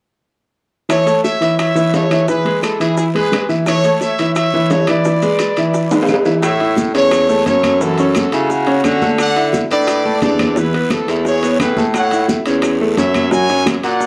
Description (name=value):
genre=latin, salsa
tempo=174 BPM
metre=4/4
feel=straight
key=A major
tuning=A4 = 439 Hz
part: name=bright trumpet section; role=melody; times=0.9-14.1 s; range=C#4 to G#5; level=-20 LUFS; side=equal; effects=none
part: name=bright concert grand piano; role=accompaniment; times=0.9-14.1 s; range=E3 to F#5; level=-20 LUFS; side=equal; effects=none
part: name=bongos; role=percussion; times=0.9-14.1 s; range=none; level=-27 LUFS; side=equal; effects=none
part: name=claves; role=percussion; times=0.9-13.8 s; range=none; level=-32 LUFS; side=equal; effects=none
part: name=guiro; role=percussion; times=0.9-14.1 s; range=none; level=-35 LUFS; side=equal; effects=none
part: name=maracas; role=percussion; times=0.9-14.1 s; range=none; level=-38 LUFS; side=equal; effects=none
part: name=timbales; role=percussion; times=0.9-14.0 s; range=none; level=-26 LUFS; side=equal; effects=none
part: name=clear baritone saxophone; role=bass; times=6.4-14.1 s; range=E2 to D3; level=-20 LUFS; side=equal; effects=none
part: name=congas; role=percussion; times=6.4-14.1 s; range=none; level=-24 LUFS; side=equal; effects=none
room=moderate studio reverb, RT60 0.7 s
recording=dark, warm production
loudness=-15 LUFS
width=mono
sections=0.9-6.4 A section; 6.4-14.1 B section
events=drum fill 5.9-6.4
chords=0.9 A; 2.3 E; 3.7 A; 5.0 E7; 6.4 A6; 7.8 F#m7; 9.2 Dadd9; 10.6 Esus4; 11.3 E; 11.9 A6; 13.3 F#